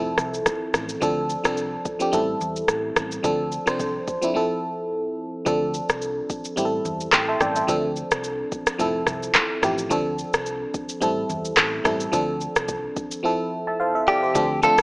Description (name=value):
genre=afrobeats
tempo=108 BPM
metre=4/4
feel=swing 55% on 16ths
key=unclear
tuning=A4 = 438 Hz
part: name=FM electric piano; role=accompaniment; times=0.0-14.8 s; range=F3 to C6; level=-23 LUFS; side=equal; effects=chorus
part: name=hollow-body short-scale fingered electric bass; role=bass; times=0.0-14.8 s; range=F1 to E2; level=-34 LUFS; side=equal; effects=none
part: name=afro-pop drum kit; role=drums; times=0.2-14.8 s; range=handclaps, kick drum, rim click, shaker, toms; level=-22 LUFS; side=equal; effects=none
part: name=direct-recorded clean electric guitar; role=melody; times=14.1-14.8 s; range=G4 to A4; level=-18 LUFS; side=equal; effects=lush chorus
room=light reverb, digital ambience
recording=small speaker sound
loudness=-21 LUFS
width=side -25 dB against mid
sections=0.0-5.5 A section; 5.5-14.4 B section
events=break 4.4-5.5; drums muted 13.2-14.4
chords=0.0 Fmaj7; 1.0 Dm7; 2.1 Am7; 3.2 Dm7; 4.4 Fmaj7; 5.5 Dm7; 6.6 Am7; 7.7 Dm7; 8.8 Fmaj7; 9.9 Dm7; 11.0 Am7; 12.1 Dm7; 13.2 Fmaj7